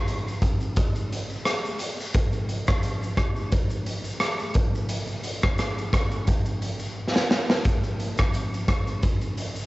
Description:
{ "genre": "indie pop", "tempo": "87 BPM", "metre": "4/4", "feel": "swing 55% on 16ths", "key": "none", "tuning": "none", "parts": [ { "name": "raw garage drum kit", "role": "drums", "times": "0.1-9.7 s", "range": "hi-hat, kick drum, rim click, shaker, snare drum", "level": "-23 LUFS", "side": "equal", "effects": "vintage 12-bit sampler grit, cassette tape" }, { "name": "tambourine", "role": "percussion", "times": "8.3-8.5 s", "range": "none", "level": "-45 LUFS", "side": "left 2 dB", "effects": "none" } ], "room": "light reverb", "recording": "home recording on cassette, nothing above 7.9 kHz", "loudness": "-23 LUFS", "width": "side -20 dB against mid", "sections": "0.0-9.7 A section", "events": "drum fill 7.0-7.7", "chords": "none", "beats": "0.09 0.77 1.46 | 2.15 2.84 3.53 4.21 | 4.90 5.59 6.28 6.97 | 7.66 8.34 9.03" }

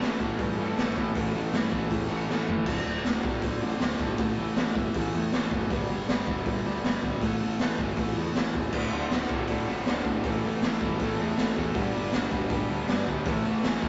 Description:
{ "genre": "punk rock", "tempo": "159 BPM", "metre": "4/4", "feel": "straight", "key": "unclear", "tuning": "A4 = 441 Hz", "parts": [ { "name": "distorted electric guitar", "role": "riff", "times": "0.0-13.9 s", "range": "D2 to A3", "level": "-36 LUFS", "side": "equal", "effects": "distortion" }, { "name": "raw garage guitar", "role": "riff", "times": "0.0-13.9 s", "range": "D2 to A3", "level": "-35 LUFS", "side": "equal", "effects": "overdrive" }, { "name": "raw garage guitar", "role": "riff", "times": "0.0-2.7, 8.7-13.9 s", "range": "D2 to A4", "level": "-36 LUFS", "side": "equal", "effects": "overdrive" }, { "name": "growling picked electric bass", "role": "bass", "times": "0.0-13.9 s", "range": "D1 to A2", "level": "-39 LUFS", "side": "equal", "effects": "overdrive" }, { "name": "raw garage drum kit", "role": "drums", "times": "0.0-13.9 s", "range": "crash cymbal, hi-hat, kick drum, snare drum, toms", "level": "-31 LUFS", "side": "equal", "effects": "none" } ], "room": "moderate small room reverb, RT60 0.5 s", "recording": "rough rehearsal-room recording, tube saturation, nothing above 7.7 kHz", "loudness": "-28 LUFS", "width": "mono", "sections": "0.0-2.7 A section; 2.7-13.9 B section", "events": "drum fill 2.3-2.7", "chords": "0.0 A; 2.7 D5; 4.2 A5; 5.7 G5; 7.2 A5; 8.7 D; 10.2 A; 11.8 G; 13.3 A", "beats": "0.02 0.40 0.78 | 1.16 1.54 1.92 2.29 | 2.67 3.05 3.43 3.81 | 4.19 4.57 4.95 5.33 | 5.70 6.08 6.46 6.84 | 7.22 7.60 7.97 8.35 | 8.73 9.11 9.49 9.87 | 10.24 10.62 11.00 11.38 | 11.75 12.13 12.51 12.89 | 13.27 13.64" }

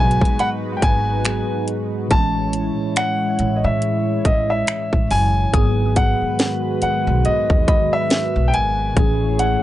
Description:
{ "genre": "contemporary R&B", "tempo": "70 BPM", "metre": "4/4", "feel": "swing 58% on 16ths", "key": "G# phrygian", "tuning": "A4 = 441 Hz", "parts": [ { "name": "warm grand piano", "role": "melody", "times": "0.0-9.6 s", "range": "D#5 to A5", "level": "-21 LUFS", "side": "left 1 dB", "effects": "analog delay" }, { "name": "tine electric piano", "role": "accompaniment", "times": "0.0-9.6 s", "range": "G#2 to G#4", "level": "-24 LUFS", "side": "equal", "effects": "medium stereo tremolo" }, { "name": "chorused pulse-width pad", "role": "sustained chords", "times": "0.0-9.6 s", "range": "D#3 to C#5", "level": "-26 LUFS", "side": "right 1 dB", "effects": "sidechain pumping" }, { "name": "upright bass", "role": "bass", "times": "0.0-9.5 s", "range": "F#1 to A2", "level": "-21 LUFS", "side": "equal", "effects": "none" }, { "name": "trap drum kit", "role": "drums", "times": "0.1-9.6 s", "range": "finger snaps, hi-hat, kick drum, snare drum", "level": "-18 LUFS", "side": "equal", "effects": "none" }, { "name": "mallet-like synth pluck", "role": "texture", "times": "0.4-9.4 s", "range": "B5 to D#6", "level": "-32 LUFS", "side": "right 2 dB", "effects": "chorus, analog delay" } ], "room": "little or no reverb", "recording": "dry, gritty hardware recording, nothing above 10.5 kHz", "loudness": "-16 LUFS", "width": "side -14 dB against mid", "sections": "0.0-5.5 A section; 5.5-9.6 B section", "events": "none", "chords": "0.0 G#m7; 2.1 Amaj7; 5.5 G#m7; 9.0 Amaj7", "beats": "0.39 1.25 | 2.11 2.96 3.82 4.68 | 5.54 6.39 7.25 8.11 | 8.96" }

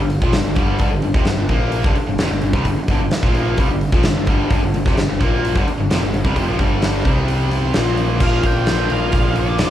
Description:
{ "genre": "classic rock", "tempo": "130 BPM", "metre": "4/4", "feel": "straight", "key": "G minor", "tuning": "A4 = 440 Hz", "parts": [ { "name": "overdriven electric guitar", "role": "riff", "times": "0.0-9.7 s", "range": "F2 to C4", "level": "-22 LUFS", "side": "left 5 dB", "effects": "none" }, { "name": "overdriven electric guitar", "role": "riff", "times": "0.0-9.7 s", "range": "F2 to F4", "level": "-24 LUFS", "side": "right 6 dB", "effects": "none" }, { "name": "growling picked electric bass", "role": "bass", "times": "0.0-9.7 s", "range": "E1 to C2", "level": "-22 LUFS", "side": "equal", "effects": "overdrive" }, { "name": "huge arena drum kit", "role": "drums", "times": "0.1-9.7 s", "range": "crash cymbal, hi-hat, kick drum, snare drum", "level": "-18 LUFS", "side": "equal", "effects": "none" }, { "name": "octave-fuzz lead guitar", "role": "melody", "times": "8.2-9.7 s", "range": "D5 to G5", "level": "-25 LUFS", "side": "right 3 dB", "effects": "distortion" } ], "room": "moderate large studio reverb, RT60 1.1 s", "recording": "band playing live in one room, vinyl crackle", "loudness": "-15 LUFS", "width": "side -11 dB against mid", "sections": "0.0-8.2 A section; 8.2-9.7 B section", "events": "none", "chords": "0.0 Gm; 7.1 C5; 7.7 Bb5; 8.2 Bb", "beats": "0.34 | 0.80 1.27 1.73 2.19 | 2.66 3.12 3.58 4.05 | 4.51 4.97 5.43 5.90 | 6.36 6.82 7.29 7.75 | 8.21 8.68 9.14 9.60" }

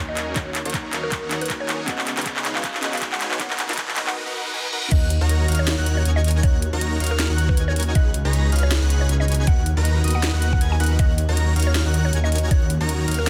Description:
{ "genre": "future bass", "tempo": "158 BPM", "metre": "4/4", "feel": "swing 56% on 16ths, half-time", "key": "Eb minor", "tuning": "A4 = 440 Hz", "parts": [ { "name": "felt-muted upright piano", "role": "accompaniment", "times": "0.0-3.5 s", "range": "Db3 to Eb5", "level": "-37 LUFS", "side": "equal", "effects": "sidechain pumping, delay" }, { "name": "ethereal airy pad", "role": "sustained chords", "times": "0.2-13.3 s", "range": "Db3 to Gb4", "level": "-40 LUFS", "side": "equal", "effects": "none" }, { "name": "dense compressed supersaw", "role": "riff", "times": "0.0-13.3 s", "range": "Eb4 to Bb5", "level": "-31 LUFS", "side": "equal", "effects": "sidechain pumping, low-pass filter" }, { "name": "detuned saw bass", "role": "bass", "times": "0.0-13.3 s", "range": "Db2 to Eb2", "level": "-23 LUFS", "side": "equal", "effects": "chorus, sidechain pumping" }, { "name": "riser and reverse cymbal", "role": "sound effects", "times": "0.1-4.9 s", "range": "none", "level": "-36 LUFS", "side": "equal", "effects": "none" }, { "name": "mallet-like synth pluck", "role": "melody", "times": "0.1-13.3 s", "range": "Bb4 to Ab5", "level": "-34 LUFS", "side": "equal", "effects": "chorus, vintage 12-bit sampler grit, sidechain pumping, delay" }, { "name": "trap drum kit", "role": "drums", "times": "0.2-13.3 s", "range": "crash cymbal, handclaps, hi-hat, snare drum", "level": "-28 LUFS", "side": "equal", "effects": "none" }, { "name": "electronic kick drum", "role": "drums", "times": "0.4-12.6 s", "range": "none", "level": "-22 LUFS", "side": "equal", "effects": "none" }, { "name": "airy dreamy lead", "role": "arpeggios", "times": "4.9-13.3 s", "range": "D#6 to Bb6", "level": "-34 LUFS", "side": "equal", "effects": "chorus, phaser, cassette tape, sidechain pumping, delay" } ], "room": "light reverb", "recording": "dense, heavily limited modern master, high-pass filter", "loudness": "-21 LUFS", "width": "mono", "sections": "0.0-4.9 A section; 4.9-13.3 B section", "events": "build-up 0.0-4.9; drum fill 0.0-4.2; filter sweep 0.0-4.9; reverse cymbal 4.2-4.9; drop 4.9-13.3", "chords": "0.0 Ebm7; 1.9 Db9sus4; 3.4 Bmaj7/D#; 4.9 Ebm7; 8.0 Db9sus4; 9.5 Bmaj7/D#; 11.0 Ebm7", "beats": "| 0.36 0.74 1.12 1.50 | 1.88 2.26 2.64 3.02 | 3.40 3.78 4.16 4.54 | 4.92 5.29 5.67 6.05 | 6.43 6.81 7.19 7.57 | 7.95 8.33 8.71 9.09 | 9.47 9.85 10.23 10.61 | 10.99 11.37 11.75 12.13 | 12.51 12.89 13.27" }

